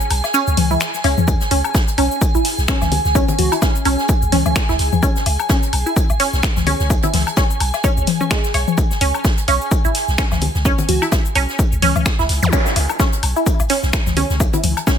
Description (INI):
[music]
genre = minimal techno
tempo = 128 BPM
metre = 4/4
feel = swing 57% on 16ths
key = C# minor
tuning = A4 = 440 Hz
[part]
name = punchy analog drum machine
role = drums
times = 0.0-15.0 s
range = finger snaps, hi-hat, shaker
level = -24 LUFS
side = left 2 dB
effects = none
[part]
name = granular cloud pad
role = texture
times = 0.0-15.0 s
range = G#5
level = -26 LUFS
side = right 2 dB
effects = built-in reverb, sidechain pumping
[part]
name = punchy sub bass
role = bass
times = 0.1-14.7 s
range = G#1 to E2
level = -19 LUFS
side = equal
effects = sidechain pumping
[part]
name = swinging big-band drum kit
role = drums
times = 0.1-15.0 s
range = hi-hat, shaker, snare drum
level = -29 LUFS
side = right 1 dB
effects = high-pass filter on hats, high-pass filter on snare, high-pass filter on perc, high-pass filter on room
[part]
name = electronic woodblock, toms and congas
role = percussion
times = 0.1-14.8 s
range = none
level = -23 LUFS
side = left 9 dB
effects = overdrive, digital delay
[part]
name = resonant blip pluck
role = riff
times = 0.3-14.9 s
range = G#3 to C#5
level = -22 LUFS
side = right 2 dB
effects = phaser, sidechain pumping, ping-pong delay
[part]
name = electronic kick drum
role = drums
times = 1.3-15.0 s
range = none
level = -18 LUFS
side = equal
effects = none
[part]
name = plucky unison lead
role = melody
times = 3.4-4.0, 10.9-11.0 s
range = C#4 to F#4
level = -24 LUFS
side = right 2 dB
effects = digital delay
[part]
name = zap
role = sound effects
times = 12.4-12.5 s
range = none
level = -22 LUFS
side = right 1 dB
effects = none
[sound]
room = light reverb, digital ambience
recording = none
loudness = -14 LUFS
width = side -8 dB against mid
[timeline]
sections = 0.0-15.0 A section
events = kick drops out 0.3-1.3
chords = 0.0 C#5